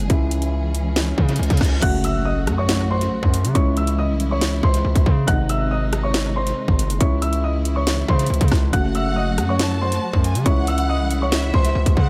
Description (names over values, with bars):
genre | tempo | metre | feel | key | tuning
hip hop, drill | 139 BPM | 4/4 | half-time | C# harmonic minor | A4 = 440 Hz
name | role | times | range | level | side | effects
felt-muted upright piano | accompaniment | 0.0-12.1 s | B#2 to F#4 | -30 LUFS | equal | dub echo
warm symphonic string section | sustained chords | 0.0-12.1 s | B#2 to G#4 | -32 LUFS | equal | none
distorted 808-style bass | bass | 0.0-12.1 s | F#1 to C#3 | -24 LUFS | equal | distortion
drill drum kit | drums | 0.1-12.1 s | crash cymbal, hi-hat, kick drum, rim click, snare drum | -23 LUFS | equal | none
reverse cymbal and impact | sound effects | 1.2-3.6 s | none | -36 LUFS | equal | none
warm upright piano | melody | 1.8-12.1 s | B#4 to F#6 | -28 LUFS | equal | dub echo
warm studio violin section | second line | 8.7-12.1 s | E5 to A5 | -31 LUFS | equal | dub echo
room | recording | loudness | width
light reverb, small room ambience | echo-heavy mix | -20 LUFS | mono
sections
0.0-1.8 A section; 1.8-12.1 B section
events
reverse cymbal 1.2-1.8; impact 1.8-3.6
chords
0.1 C#m; 1.8 F#m; 3.6 C#m; 5.3 G#; 7.0 C#m; 8.7 F#m; 10.5 C#m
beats
| 0.10 0.53 0.96 1.39 | 1.82 2.26 2.69 3.12 | 3.55 3.98 4.42 4.85 | 5.28 5.71 6.14 6.57 | 7.00 7.44 7.87 8.30 | 8.73 9.16 9.60 10.03 | 10.46 10.89 11.32 11.75